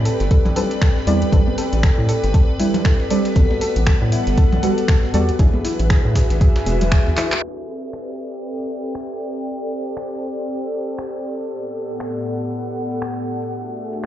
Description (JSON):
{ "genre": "deep house", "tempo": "118 BPM", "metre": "4/4", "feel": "swing 58% on 16ths", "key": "A dorian", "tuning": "A4 = 444 Hz", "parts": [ { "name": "airy breathy pad", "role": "sustained chords", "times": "0.0-14.1 s", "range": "A2 to F#5", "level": "-27 LUFS", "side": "left 1 dB", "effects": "chorus, vintage 12-bit sampler grit, sidechain pumping" }, { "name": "deep mellow chord stab", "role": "stabs", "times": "0.0-6.6 s", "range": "F#3 to D5", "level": "-23 LUFS", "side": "right 2 dB", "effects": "chorus, sidechain pumping, dub echo" }, { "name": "rubbery square bass", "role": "bass", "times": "0.0-7.1 s", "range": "E1 to A2", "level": "-19 LUFS", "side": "equal", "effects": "sidechain pumping" }, { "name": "airy breathy pad", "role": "texture", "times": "0.0-14.1 s", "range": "A3 to G#5", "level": "-28 LUFS", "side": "equal", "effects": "chorus, sidechain pumping" }, { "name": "string machine, violins", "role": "texture", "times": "0.0-7.4 s", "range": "B4 to B5", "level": "-33 LUFS", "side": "left 1 dB", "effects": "ensemble chorus, sidechain pumping" }, { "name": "soft round pluck", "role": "arpeggios", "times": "0.1-7.3 s", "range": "E4 to A4", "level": "-27 LUFS", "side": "left 1 dB", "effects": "chorus, sidechain pumping, dub echo" }, { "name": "deep house drum kit", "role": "drums", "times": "0.1-14.1 s", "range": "crash cymbal, finger snaps, handclaps, hi-hat", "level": "-28 LUFS", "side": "equal", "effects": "low-pass filter on hats, studio reverb, low-pass filter on snare, low-pass filter on cymbals" }, { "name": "dusty soul sampler-style drum kit", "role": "drums", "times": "0.1-7.4 s", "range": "hi-hat, snare drum", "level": "-37 LUFS", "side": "equal", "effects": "none" }, { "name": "electronic kick drum", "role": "drums", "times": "0.3-7.0 s", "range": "none", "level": "-15 LUFS", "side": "equal", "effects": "studio reverb" }, { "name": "congas", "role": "percussion", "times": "0.5-6.9 s", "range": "none", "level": "-26 LUFS", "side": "left 1 dB", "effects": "none" } ], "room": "light reverb", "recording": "played on a big sound system in a bare room, stone room reverb, low-pass filter, nothing above 7.6 kHz", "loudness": "-16 LUFS", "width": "side -12 dB against mid", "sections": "0.0-7.4 A section; 7.4-14.1 B section", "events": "drum fill 7.2; band accent 7.3; filter sweep on drum 7.4-14.1; filter sweep 7.4-14.1", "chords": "0.0 Am11; 3.4 Gmaj9; 5.4 E9/A; 7.4 Am11; 11.5 Gmaj9/A; 13.5 E9/A" }